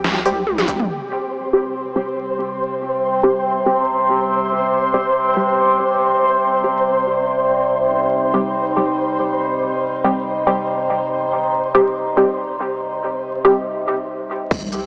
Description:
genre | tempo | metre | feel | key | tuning
deep dubstep | 141 BPM | 4/4 | swing 54% on 16ths, half-time | C minor | A4 = 441 Hz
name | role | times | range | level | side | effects
deep soft wobble bass | bass | 0.0-0.9, 14.5-14.9 s | C2 | -31 LUFS | equal | chorus
dubstep drum kit | drums | 0.0-0.9, 14.5-14.8 s | crash cymbal, hi-hat, snare drum, toms | -24 LUFS | equal | low-pass filter on hats, studio reverb, low-pass filter on snare, low-pass filter on toms, low-pass filter on cymbals
flickering grainy texture | texture | 0.0-13.7 s | G4 to C5 | -24 LUFS | equal | built-in reverb
filtered dub chord stab | stabs | 0.3-13.5 s | G3 to G4 | -22 LUFS | equal | phaser, analog chorus, dub echo
electronic kick drum | drums | 0.7-0.8, 14.5-14.6 s | none | -26 LUFS | equal | studio reverb
overtone-sweeping drone | sustained chords | 1.5-14.9 s | C3 to Eb4 | -22 LUFS | equal | chorus, built-in reverb
room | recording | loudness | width
moderate huge ambient reverb, RT60 4.8 s | dry, gritty hardware recording, vinyl crackle, small speaker sound | -19 LUFS | mono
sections
0.9-14.5 A section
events
drum fill 0.5-0.9; filter sweep on synth stab 0.9-14.5; break 13.7-14.5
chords
0.0 C5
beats
0.04 0.47 | 0.90 1.32 1.75 2.17 | 2.60 3.02 3.45 3.87 | 4.30 4.72 5.15 5.58 | 6.00 6.43 6.85 7.28 | 7.70 8.13 8.55 8.98 | 9.40 9.83 10.26 10.68 | 11.11 11.53 11.96 12.38 | 12.81 13.23 13.66 14.09 | 14.51

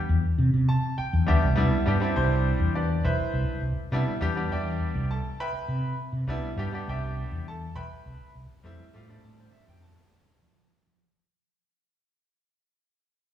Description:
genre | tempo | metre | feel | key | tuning
jazz | 102 BPM | 4/4 | straight | C major | A4 = 438 Hz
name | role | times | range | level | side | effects
mellow fretless electric bass | bass | 0.1-11.0 s | B1 to F3 | -25 LUFS | equal | ensemble chorus
bright grand piano | accompaniment | 0.7-10.7 s | G3 to B5 | -29 LUFS | equal | slapback echo
room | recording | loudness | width
light reverb | live gig heard through the venue's PA, recital hall reverb, small room ambience | -24 LUFS | side -11 dB against mid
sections
0.0-1.6 A section; 1.6-11.0 B section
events
grand piano fill 0.4-1.6; fade-out 1.6-11.0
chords
0.0 Cadd9; 1.6 Cmaj9; 8.6 Fmaj9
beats
0.38 0.97 | 1.56 2.15 2.74 3.33 | 3.92 4.51 5.11 5.70 | 6.29 6.88 7.47 8.06 | 8.65 9.24 9.83 10.42

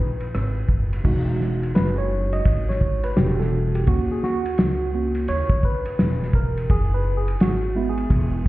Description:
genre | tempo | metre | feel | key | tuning
hip hop, jazz-hop | 85 BPM | 4/4 | swing 64% on 16ths | unclear | A4 = 440 Hz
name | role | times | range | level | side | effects
upright bass | bass | 0.0-8.5 s | E1 to D#2 | -23 LUFS | equal | none
cloth-damped thuddy drum kit | drums | 0.2-8.5 s | crash cymbal, hi-hat, kick drum, ride cymbal, rim click, snare drum | -23 LUFS | equal | none
mellow tine electric piano | accompaniment | 1.0-8.5 s | G3 to D#5 | -25 LUFS | right 2 dB | overdrive, slow stereo tremolo
room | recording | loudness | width
light reverb | heard muffled through a wall, stone room reverb, EQ, nothing above 10.8 kHz | -19 LUFS | side -17 dB against mid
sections
0.0-1.0 A section; 1.0-8.5 B section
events
tine electric piano solo 1.0-8.5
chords
0.0 Bmaj13; 1.0 Emaj9; 3.2 Em7; 3.9 D#m7; 6.7 F#9sus4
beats
0.34 | 1.05 1.75 2.46 3.17 | 3.87 4.58 5.28 5.99 | 6.70 7.40 8.11

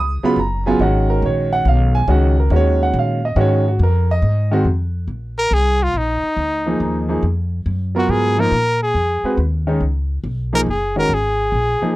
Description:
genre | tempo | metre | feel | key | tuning
modal jazz | 140 BPM | 3/4 | swing 68% on 8ths | G# dorian, Bb phrygian from 4.7 s | A4 = 440 Hz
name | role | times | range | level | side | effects
warm concert grand piano | accompaniment | 0.0-4.7, 6.7-12.0 s | C#3 to D#6 | -18 LUFS | right 1 dB | none
upright bass | bass | 0.0-11.8 s | F#1 to A#2 | -18 LUFS | equal | none
clear trumpet | melody | 5.4-12.0 s | Eb4 to Bb4 | -18 LUFS | equal | none
room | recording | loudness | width
little or no reverb | dry, close 1970s-style studio recording | -15 LUFS | side -17 dB against mid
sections
0.0-4.7 A section; 4.7-12.0 B section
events
none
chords
0.0 G#13sus4; 4.7 Bb7sus4; 9.8 Db9sus4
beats
0.38 | 0.81 1.24 1.66 | 2.09 2.52 2.95 | 3.38 3.80 4.23 | 4.66 5.09 5.52 | 5.95 6.38 6.80 | 7.24 7.66 8.09 | 8.52 8.95 9.38 | 9.81 10.24 10.67 | 11.10 11.53

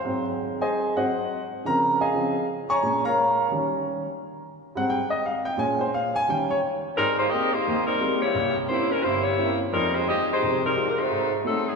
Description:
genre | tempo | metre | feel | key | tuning
jazz | 174 BPM | 4/4 | swing 62% on 8ths | Ab major | A4 = 441 Hz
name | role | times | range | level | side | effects
warm baby grand piano | accompaniment | 0.0-11.7 s | G1 to Db6 | -24 LUFS | right 1 dB | none
dark saxophone section | melody | 7.0-11.8 s | Gb3 to Eb5 | -22 LUFS | left 1 dB | none
room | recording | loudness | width
wet church reverb, RT60 3.0 s | recorded in a church or concert hall, lossy compression artefacts | -22 LUFS | side -4 dB against mid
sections
0.0-7.0 A section; 7.0-11.8 B section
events
grand piano solo 0.0-7.0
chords
0.0 Ab7; 1.4 Dbmaj9; 2.8 Bbm7; 3.5 Eb7; 4.2 Abmaj7; 5.6 Bbm7; 6.3 Eb7; 7.0 Abmaj9; 8.3 C7b9; 9.7 Fm9; 11.1 Ab7b9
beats
| 0.05 0.39 0.74 1.09 | 1.43 1.78 2.12 2.47 | 2.82 3.16 3.51 3.86 | 4.20 4.55 4.89 5.24 | 5.58 5.93 6.27 6.62 | 6.96 7.31 7.65 8.00 | 8.34 8.69 9.03 9.38 | 9.72 10.07 10.41 10.76 | 11.10 11.45

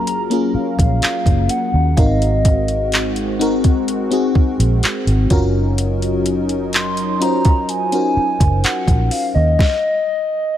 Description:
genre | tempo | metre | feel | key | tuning
contemporary R&B | 63 BPM | 4/4 | straight | Eb dorian | A4 = 441 Hz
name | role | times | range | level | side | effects
hollow clarinet-like synth lead | melody | 0.0-10.6 s | Eb5 to C6 | -20 LUFS | equal | chorus, digital delay
FM electric piano with soft pad layer | accompaniment | 0.0-9.6 s | Bb3 to C5 | -20 LUFS | left 2 dB | chorus
warm analog pad | sustained chords | 0.0-9.6 s | Gb3 to Bb4 | -25 LUFS | equal | chorus
vintage muted fingered electric bass | bass | 0.0-9.6 s | Gb1 to Eb2 | -18 LUFS | equal | none
smooth R&B drum kit | drums | 0.1-9.8 s | handclaps, hi-hat, kick drum, snare drum | -17 LUFS | equal | none
soft synth bell | texture | 2.0-3.2 s | F5 | -31 LUFS | left 1 dB | none
room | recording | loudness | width
little or no reverb | none | -14 LUFS | side -11 dB against mid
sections
0.0-10.6 A section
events
none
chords
0.0 Gbmaj7; 2.0 Ab7; 5.3 Ebm7/Gb; 9.6 N.C.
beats
0.07 1.02 | 1.97 2.93 3.88 4.83 | 5.78 6.74 7.69 8.64 | 9.59 10.54

